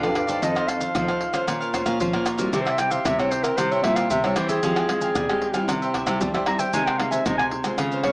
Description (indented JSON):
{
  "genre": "samba and choro",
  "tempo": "114 BPM",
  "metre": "4/4",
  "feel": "straight",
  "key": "F minor",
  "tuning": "A4 = 440 Hz",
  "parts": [
    { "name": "mellow clarinet", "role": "melody", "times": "0.0-8.1 s", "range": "Gb4 to Bb5", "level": "-24 LUFS", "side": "equal", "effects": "none" },
    { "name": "cavaquinho", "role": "accompaniment", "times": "0.0-8.1 s", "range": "Eb4 to Ab5", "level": "-29 LUFS", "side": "right 1 dB", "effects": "none" },
    { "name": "nylon-string guitar", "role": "accompaniment", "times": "0.0-8.1 s", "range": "G2 to C5", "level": "-29 LUFS", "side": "equal", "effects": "none" },
    { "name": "nylon-string guitar", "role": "bass", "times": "0.0-8.1 s", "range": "F2 to G3", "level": "-26 LUFS", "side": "equal", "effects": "none" },
    { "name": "maracas, pandeiro, tamborim and surdo", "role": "percussion", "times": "0.0-8.1 s", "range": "none", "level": "-28 LUFS", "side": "equal", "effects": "none" }
  ],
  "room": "moderate studio reverb, RT60 0.5 s",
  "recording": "small speaker sound",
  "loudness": "-20 LUFS",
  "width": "side -28 dB against mid",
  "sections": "0.0-8.1 A section",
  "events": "clarinet solo 0.0-8.1",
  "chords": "0.4 F7; 1.5 Bbmadd9; 2.5 C; 4.6 Fmadd9; 5.7 C; 6.7 Abadd9/C",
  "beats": "| 0.42 0.95 1.48 2.00 | 2.53 3.06 3.58 4.11 | 4.63 5.16 5.68 6.21 | 6.73 7.26 7.78"
}